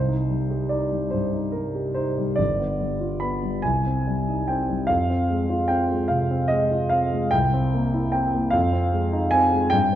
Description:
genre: classical, romantic character piece for solo piano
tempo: 49 BPM (dotted quarters)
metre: 6/8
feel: rubato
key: C minor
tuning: A4 = 442 Hz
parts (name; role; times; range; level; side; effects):
- warm concert grand piano; solo; 0.0-10.0 s; G1 to B5; -20 LUFS; equal; none
room: wet recital hall reverb, RT60 1.5 s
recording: dark, warm production, nothing above 10.5 kHz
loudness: -20 LUFS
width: side -11 dB against mid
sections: 0.0-10.0 A section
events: none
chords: 0.0 Cm; 2.4 G7; 3.6 Cm; 4.9 Fm; 7.3 C7; 8.5 Fm7

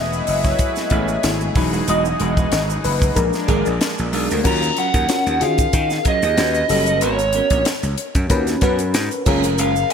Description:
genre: polished 1980s jazz-funk pop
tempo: 93 BPM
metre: 4/4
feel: swing 54% on 16ths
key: unclear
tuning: A4 = 440 Hz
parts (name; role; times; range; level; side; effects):
- FM electric piano; accompaniment; 0.0-9.9 s; E#3 to E5; -22 LUFS; left 3 dB; analog chorus
- lush unison pad; sustained chords; 0.0-4.4 s; E3 to B4; -27 LUFS; right 1 dB; chorus
- gritty slap bass; bass; 0.0-9.8 s; E1 to D#3; -22 LUFS; equal; overdrive
- clean electric guitar; riff; 0.1-9.8 s; F#3 to B4; -27 LUFS; right 5 dB; lush chorus
- tube shaker; percussion; 0.1-9.9 s; none; -34 LUFS; right 12 dB; none
- tight funk drum kit; drums; 0.3-9.9 s; crash cymbal, hi-hat, kick drum, snare drum; -21 LUFS; equal; none
- smooth overdriven lead guitar; melody; 4.5-9.9 s; C#5 to A#5; -20 LUFS; right 1 dB; none
room: light reverb, small room reverb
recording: bright 1980s-style digital production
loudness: -16 LUFS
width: side -7 dB against mid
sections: 0.0-4.5 A section; 4.5-9.9 B section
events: FM electric piano solo 0.0-4.5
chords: 0.0 F#m11; 1.6 Emaj9; 3.2 A#7; 4.5 D#m9; 6.4 D#7alt; 7.0 G#m11; 9.3 F#maj9

